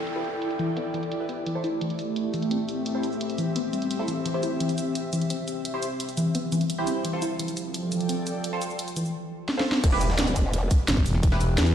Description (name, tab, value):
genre	dark technical drum and bass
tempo	172 BPM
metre	4/4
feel	straight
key	E phrygian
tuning	A4 = 441 Hz
part	deep dark ambient pad	sustained chords	0.0-11.7 s	A3 to A5	-43 LUFS	left 2 dB	chorus, built-in reverb, sidechain pumping
part	downlifter and impact	sound effects	0.0-1.5, 9.8-11.2 s	none	-35 LUFS	equal	none
part	airy breathy pad	texture	0.0-9.1 s	F3 to G5	-30 LUFS	equal	chorus, sidechain pumping
part	drum and bass drum kit	drums	0.1-11.7 s	crash cymbal, hi-hat, shaker, snare drum	-30 LUFS	equal	low-pass filter on hats, studio reverb, low-pass filter on snare, low-pass filter on perc, low-pass filter on toms, low-pass filter on cymbals
part	band-passed chord stab	stabs	0.2-11.4 s	E4 to C5	-33 LUFS	right 2 dB	phaser, wide subtle chorus, dub echo
part	soft round pluck	arpeggios	0.6-9.0 s	E3 to E4	-30 LUFS	left 2 dB	chorus, vintage 12-bit sampler grit, sidechain pumping, dub echo
part	growl bass	bass	9.8-10.7 s	E1	-26 LUFS	equal	chorus, overdrive
part	breakbeat sampler-style drum kit	drums	9.8-11.7 s	ride cymbal, snare drum	-38 LUFS	right 1 dB	none
part	electronic kick drum	drums	9.8-11.3 s	none	-21 LUFS	equal	studio reverb
part	growling FM bass	bass	10.9-11.7 s	E1 to E2	-22 LUFS	equal	none
room	moderate lush hall reverb, RT60 1.8 s, digital ambience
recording	played on a big sound system in a bare room, stone room reverb, lossy compression artefacts, faint mains hum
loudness	-24 LUFS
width	side -9 dB against mid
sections	0.0-9.8 A section; 9.8-11.7 B section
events	filter sweep on drum 0.0-9.8; filter sweep on ambient pad 0.0-9.8; filter sweep on synth stab 0.0-9.8; drum fill 9.5-9.8; drop 9.8-11.7; impact 9.8-11.2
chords	0.0 Em; 1.5 Am; 4.3 C; 7.0 F; 9.8 Em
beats	| 0.07 0.42 0.77 1.12 | 1.47 1.81 2.16 2.51 | 2.86 3.21 3.56 3.91 | 4.25 4.60 4.95 5.30 | 5.65 6.00 6.35 6.70 | 7.05 7.39 7.74 8.09 | 8.44 8.79 9.14 9.49 | 9.84 10.19 10.53 10.88 | 11.23 11.58